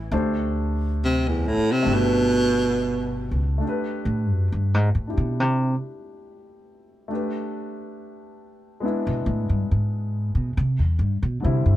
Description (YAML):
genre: jazz ballad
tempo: 69 BPM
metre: 4/4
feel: swing 66% on 8ths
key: C major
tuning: A4 = 440 Hz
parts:
  - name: breathy baritone saxophone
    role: melody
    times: 0.0-3.5 s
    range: E2 to C3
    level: -21 LUFS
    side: right 1 dB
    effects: none
  - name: warm baby grand piano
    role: accompaniment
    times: 0.0-11.8 s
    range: D3 to C#5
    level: -29 LUFS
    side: left 2 dB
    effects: none
  - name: upright bass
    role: bass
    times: 0.0-11.8 s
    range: G1 to C3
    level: -22 LUFS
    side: equal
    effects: none
room: light reverb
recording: heard from further back in the room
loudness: -21 LUFS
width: side -14 dB against mid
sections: 0.0-3.6 A section; 3.6-11.8 A section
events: baritone saxophone solo 0.0-3.6; upright bass solo 3.6-11.8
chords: 0.1 D5; 1.9 Gadd9; 3.6 Cmaj7 (rootless); 7.1 A9sus4; 8.8 E7; 10.6 Am9 (rootless)